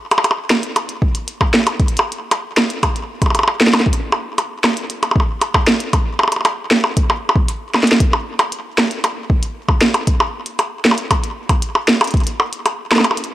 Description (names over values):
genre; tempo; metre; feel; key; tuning
IDM; 116 BPM; 4/4; straight; none; none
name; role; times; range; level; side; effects
glitchy drum kit; drums; 0.1-13.3 s; hi-hat, percussion blips, snare drum; -15 LUFS; equal; tape echo
electronic kick drum; drums; 1.0-12.2 s; none; -16 LUFS; equal; none
room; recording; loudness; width
light reverb; dry, gritty hardware recording, cassette tape; -14 LUFS; side -14 dB against mid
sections
0.0-13.3 A section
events
none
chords
none